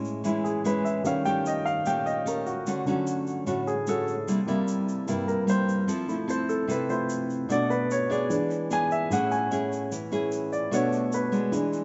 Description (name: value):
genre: bossa nova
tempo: 149 BPM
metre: 4/4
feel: straight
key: unclear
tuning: A4 = 439 Hz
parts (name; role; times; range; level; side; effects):
- nylon-string guitar; accompaniment; 0.0-11.8 s; G2 to A4; -31 LUFS; equal; none
- warm baby grand piano; accompaniment; 0.0-11.8 s; A2 to G#5; -29 LUFS; equal; none
- tube shaker; percussion; 0.0-11.8 s; none; -48 LUFS; equal; none
room: moderate plate reverb, RT60 2.6 s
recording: nothing above 7.8 kHz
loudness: -27 LUFS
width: mono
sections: 0.0-11.8 A section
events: grand piano solo 0.0-11.8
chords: 0.0 Amaj7; 1.0 D#7#11; 2.7 Dmaj7; 4.3 C7; 5.9 Fmaj7; 7.5 Bm7; 8.3 E7; 9.1 Amaj7; 10.7 Bm7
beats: 0.24 0.64 | 1.05 1.45 1.85 2.26 | 2.66 3.06 3.47 3.87 | 4.27 4.68 5.08 5.48 | 5.89 6.29 6.69 7.09 | 7.50 7.90 8.30 8.71 | 9.11 9.51 9.91 10.32 | 10.72 11.12 11.53